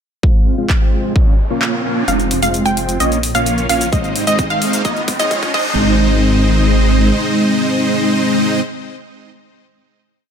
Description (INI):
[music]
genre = EDM, festival progressive house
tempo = 130 BPM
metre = 4/4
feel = straight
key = Ab major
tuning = A4 = 440 Hz
[part]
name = dense compressed supersaw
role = riff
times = 0.2-8.6 s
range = Ab3 to G5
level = -16 LUFS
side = equal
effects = sidechain pumping, low-pass filter, ping-pong delay
[part]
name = electronic kick drum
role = drums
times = 0.2-5.6 s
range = none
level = -14 LUFS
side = equal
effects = none
[part]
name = riser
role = sound effects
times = 1.2-5.8 s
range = none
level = -25 LUFS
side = right 1 dB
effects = none
[part]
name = big-room dance drum kit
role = drums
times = 0.7-5.6 s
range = crash cymbal, handclaps, hi-hat, shaker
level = -23 LUFS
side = equal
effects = none
[part]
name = wide unison pluck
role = arpeggios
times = 2.1-8.6 s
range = Eb5 to G5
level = -19 LUFS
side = right 1 dB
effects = sidechain pumping, ping-pong delay
[part]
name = wide detuned saw bass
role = bass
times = 2.1-7.1 s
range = F1 to Db2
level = -18 LUFS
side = equal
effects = chorus, sidechain pumping
[sound]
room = light reverb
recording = high-pass filter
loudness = -12 LUFS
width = side -7 dB against mid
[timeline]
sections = 0.2-2.1 intro; 2.1-5.8 build; 5.8-9.5 final hit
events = riser 1.2-2.1, 2.1-5.8; break 1.6-2.1; build-up 2.1-5.8; filter sweep on supersaw synth 2.1-5.8; filter sweep 2.1-5.8; drum fill 3.9-5.8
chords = 0.2 Fm; 1.2 Bbm; 2.1 Fm; 3.0 Bbm; 3.9 Ab; 4.8 Dbadd9; 5.5 Ab